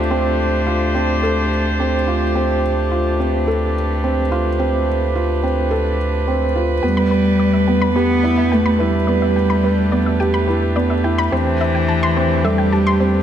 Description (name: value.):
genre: piano and strings electronica.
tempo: 107 BPM.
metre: 4/4.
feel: straight.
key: unclear.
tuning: A4 = 440 Hz.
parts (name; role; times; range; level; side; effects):
dark string quartet; sustained chords; 0.0-13.2 s; A3 to C5; -22 LUFS; right 1 dB; none.
felt-muted upright piano; riff; 0.0-13.2 s; B3 to A4; -21 LUFS; right 2 dB; ping-pong delay.
warm sub bass; bass; 0.0-13.2 s; D2 to E2; -21 LUFS; equal; none.
dark cello; melody; 6.8-13.2 s; E3 to B3; -18 LUFS; equal; ping-pong delay.
analog pluck; arpeggios; 6.8-13.1 s; B4 to C6; -25 LUFS; left 2 dB; chorus, ping-pong delay.
room: moderate lush hall reverb, RT60 2.4 s.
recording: none.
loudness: -15 LUFS.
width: side -9 dB against mid.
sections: 0.0-13.2 A section.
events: none.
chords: 0.0 Dm7; 6.8 Em7; 11.3 Am7/E.